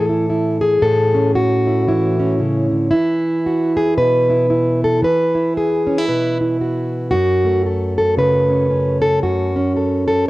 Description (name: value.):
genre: folk, solo fingerstyle acoustic guitar.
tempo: 114 BPM.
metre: 4/4.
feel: swing 60% on 8ths.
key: A major.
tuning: A4 = 440 Hz.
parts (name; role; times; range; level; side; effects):
fingerpicked plugged-in steel-string acoustic guitar; solo; 0.0-10.3 s; F#2 to B4; -14 LUFS; equal; cassette tape.
room: light reverb, small room ambience.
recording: home recording on cassette.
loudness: -14 LUFS.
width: side -18 dB against mid.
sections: 0.0-10.3 A section.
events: none.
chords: 0.0 A; 2.9 Eadd9; 7.1 F#m.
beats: 0.29 | 0.82 1.34 1.87 2.39 | 2.92 3.44 3.97 4.49 | 5.02 5.54 6.07 6.59 | 7.12 7.65 8.18 8.70 | 9.23 9.76 10.29.